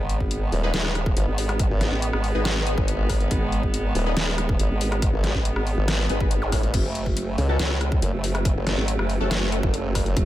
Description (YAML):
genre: heavy wobble dubstep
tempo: 140 BPM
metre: 4/4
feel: half-time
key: unclear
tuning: A4 = 439 Hz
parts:
  - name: rich chamber string section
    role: sustained chords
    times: 0.0-10.2 s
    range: C#3 to B3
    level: -31 LUFS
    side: right 3 dB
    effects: sidechain pumping
  - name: formant-sweep wobble bass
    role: bass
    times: 0.0-10.2 s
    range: D#1 to C#2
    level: -25 LUFS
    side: equal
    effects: chorus, overdrive
  - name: dubstep drum kit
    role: drums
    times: 0.1-10.2 s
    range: crash cymbal, hi-hat, rim click, snare drum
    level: -28 LUFS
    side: left 1 dB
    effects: none
  - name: electronic kick drum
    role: drums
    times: 0.2-10.2 s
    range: none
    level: -25 LUFS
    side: equal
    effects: none
  - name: formant-sweep wobble bass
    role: bass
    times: 0.5-10.1 s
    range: D#1 to C#2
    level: -23 LUFS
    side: equal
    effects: chorus, overdrive
  - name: orchestra-hit-like synth stab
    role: stabs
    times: 0.6-10.2 s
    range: C#4 to B4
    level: -33 LUFS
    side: left 3 dB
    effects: built-in reverb, phaser, dub echo
  - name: zap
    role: sound effects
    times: 6.4-6.5 s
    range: none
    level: -34 LUFS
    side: equal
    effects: none
room: little or no reverb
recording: none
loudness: -21 LUFS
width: side -14 dB against mid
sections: 0.0-10.2 A section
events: none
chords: 0.0 G#m; 6.7 F#m